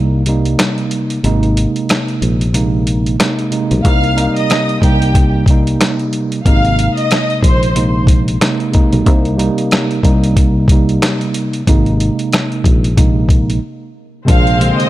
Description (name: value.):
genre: hip hop, boom-bap hip-hop.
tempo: 92 BPM.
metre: 4/4.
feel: swing 58% on 16ths.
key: unclear.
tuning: A4 = 441 Hz.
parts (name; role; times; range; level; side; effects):
mellow tine electric piano; accompaniment; 0.0-14.9 s; C3 to Eb4; -16 LUFS; right 2 dB; slow stereo tremolo, cassette tape.
fingered electric bass; bass; 0.0-14.7 s; Ab1 to C2; -15 LUFS; equal; none.
dusty soul sampler-style drum kit; drums; 0.3-14.9 s; hi-hat, kick drum, rim click, snare drum; -14 LUFS; equal; none.
warm studio violin section; melody; 3.8-7.9, 14.3-14.9 s; G4 to F6; -18 LUFS; equal; digital delay.
warm studio string section; sustained chords; 14.3-14.9 s; Ab3 to C5; -20 LUFS; left 4 dB; none.
room: light reverb.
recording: none.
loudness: -11 LUFS.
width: side -15 dB against mid.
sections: 0.0-14.3 A section.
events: break 0.0-3.8, 13.6-14.3.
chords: 0.0 Cm7; 1.2 Abadd9; 3.8 Cm7; 6.5 Abadd9; 9.1 Cm7; 11.7 Abadd9; 14.3 Bb9.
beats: 0.58 | 1.24 1.89 2.54 3.19 | 3.85 4.50 5.15 5.80 | 6.45 7.11 7.76 8.41 | 9.06 9.71 10.37 11.02 | 11.67 12.32 12.98 13.63 | 14.28.